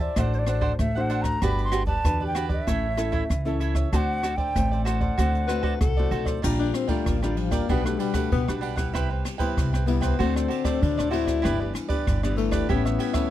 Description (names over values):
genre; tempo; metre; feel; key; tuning
samba and choro; 96 BPM; 4/4; straight; G major; A4 = 441 Hz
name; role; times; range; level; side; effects
breathy wooden flute; melody; 0.0-6.1 s; C5 to C6; -29 LUFS; equal; none
cavaquinho; accompaniment; 0.0-13.3 s; D4 to A5; -31 LUFS; right 8 dB; none
nylon-string guitar; accompaniment; 0.0-13.3 s; G2 to C5; -30 LUFS; left 3 dB; none
upright bass; bass; 0.0-13.0 s; G1 to D3; -26 LUFS; equal; none
jazz brush drum kit; drums; 0.2-13.3 s; crash cymbal, hi-hat, kick drum, ride cymbal, rim click; -29 LUFS; equal; none
breathy tenor saxophone; second line; 5.5-13.3 s; D3 to B4; -27 LUFS; left 9 dB; none
room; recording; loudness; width
little or no reverb; dry, close 1970s-style studio recording; -22 LUFS; side -13 dB against mid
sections
0.0-6.4 A section; 6.4-13.3 B section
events
tenor saxophone solo 6.4-13.3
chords
0.2 D7/A; 1.4 Gmaj7; 2.7 A; 3.9 D7; 6.4 Bb6; 7.7 Gmaj7/B; 8.9 Cmaj7; 10.2 D7; 11.4 G6; 12.7 A7